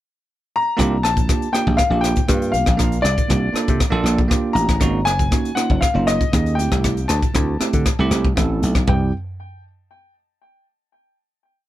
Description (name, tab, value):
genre	electric jazz fusion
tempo	119 BPM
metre	4/4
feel	straight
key	unclear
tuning	A4 = 440 Hz
part	clear concert grand piano	melody	0.6-9.1 s	D5 to Bb5	-23 LUFS	left 3 dB	none
part	bell-like tine electric piano	accompaniment	0.8-9.1 s	G3 to Bb4	-22 LUFS	right 4 dB	none
part	dry thumbed slap bass	bass	0.8-9.1 s	Gb1 to D3	-20 LUFS	equal	none
part	crisp fusion drum kit	drums	0.8-9.0 s	hi-hat, kick drum, rim click, toms	-20 LUFS	equal	none
room	little or no reverb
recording	none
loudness	-16 LUFS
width	side -14 dB against mid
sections	0.0-0.8 pickup bar; 0.8-8.9 A section; 8.9-10.9 final chord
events	none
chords	0.0 N.C.; 0.8 C9sus4; 4.8 Ab9sus4; 6.6 D9sus4; 8.9 C